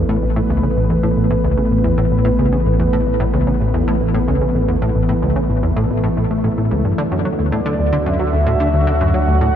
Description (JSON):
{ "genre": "ambient, sequencer-driven space music", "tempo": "111 BPM", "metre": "4/4", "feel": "straight", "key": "unclear", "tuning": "A4 = 444 Hz", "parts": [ { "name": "sweeping resonant pad", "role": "sustained chords", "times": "0.0-9.6 s", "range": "D3 to B4", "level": "-19 LUFS", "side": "right 1 dB", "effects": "chorus" }, { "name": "plucky analog bass", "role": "riff", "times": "0.0-9.5 s", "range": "A1 to F#3", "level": "-18 LUFS", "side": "left 1 dB", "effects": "lush chorus, cassette tape, ping-pong delay" }, { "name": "warm sub bass", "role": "bass", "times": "0.0-9.6 s", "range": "A1 to D2", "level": "-21 LUFS", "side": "equal", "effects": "none" }, { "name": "mellow horn-like synth lead", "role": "melody", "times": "7.5-9.6 s", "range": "D5 to F#5", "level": "-21 LUFS", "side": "right 2 dB", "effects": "chorus, ping-pong delay" } ], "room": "wet cathedral reverb, RT60 5.0 s", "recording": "in a vast, echoing space, cassette tape", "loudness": "-14 LUFS", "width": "side -9 dB against mid", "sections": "0.0-9.6 A section", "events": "none", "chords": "0.0 Asus2; 7.0 D" }